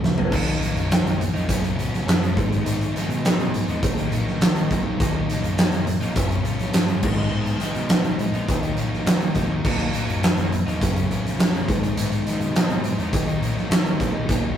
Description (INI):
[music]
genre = quiet-loud alternative rock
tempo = 103 BPM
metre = 4/4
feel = straight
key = unclear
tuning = A4 = 440 Hz
[part]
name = thick fuzz guitar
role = riff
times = 0.0-14.6 s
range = F#2 to D#4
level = -26 LUFS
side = left 1 dB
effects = distortion
[part]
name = overdriven picked electric bass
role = bass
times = 0.0-14.5 s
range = A#1 to F#3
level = -28 LUFS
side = equal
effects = none
[part]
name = huge arena drum kit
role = drums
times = 0.0-14.4 s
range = crash cymbal, hi-hat, kick drum, snare drum, toms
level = -21 LUFS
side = equal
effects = none
[sound]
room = light reverb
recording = rough rehearsal-room recording, tube saturation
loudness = -19 LUFS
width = side -9 dB against mid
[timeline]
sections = 0.3-14.6 A section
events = drum fill 0.0-0.3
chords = 0.3 D#m; 1.5 F#sus4; 2.4 G#m; 3.8 D#m; 6.2 F#sus4; 7.0 G#m; 8.5 D#m; 10.8 F#sus4; 11.7 G#m; 13.1 D#m